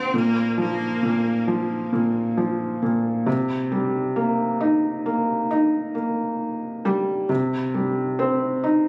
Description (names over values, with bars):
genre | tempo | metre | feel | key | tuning
pop | 67 BPM | 4/4 | straight | unclear | A4 = 437 Hz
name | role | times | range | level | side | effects
bright cello | melody | 0.0-1.4 s | Bb3 to C4 | -29 LUFS | equal | digital delay
felt-muted upright piano | accompaniment | 0.0-8.9 s | Bb2 to Eb4 | -23 LUFS | equal | none
room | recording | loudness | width
moderate recital hall reverb, RT60 1.3 s | recorded on a phone in the room, studio ambience, compression | -23 LUFS | mono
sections
0.0-8.9 A section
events
none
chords
0.1 Bb5; 3.3 Cm7; 7.3 Cm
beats
| 0.14 1.03 1.93 2.82 | 3.72 4.61 5.51 6.40 | 7.30 8.19